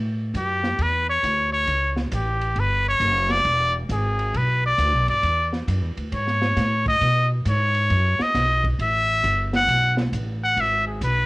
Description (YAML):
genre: jazz, small-group swing and bop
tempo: 135 BPM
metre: 4/4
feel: swing 66% on 8ths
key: E mixolydian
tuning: A4 = 440 Hz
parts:
  - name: upright bass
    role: bass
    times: 0.0-11.3 s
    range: E1 to B2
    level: -24 LUFS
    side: equal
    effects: none
  - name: open jazz drum kit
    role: drums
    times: 0.3-11.2 s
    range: hi-hat, kick drum, ride cymbal, snare drum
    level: -31 LUFS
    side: equal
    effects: cassette tape
  - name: trumpet with straight mute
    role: melody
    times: 0.4-11.3 s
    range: G4 to F#5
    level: -21 LUFS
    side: equal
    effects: cassette tape
room: light reverb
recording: home recording on cassette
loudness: -19 LUFS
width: side -23 dB against mid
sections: 0.0-11.3 A section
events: muted trumpet solo 0.0-11.3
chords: 0.0 A7; 3.5 E7; 7.0 B; 8.8 A5; 10.6 G#m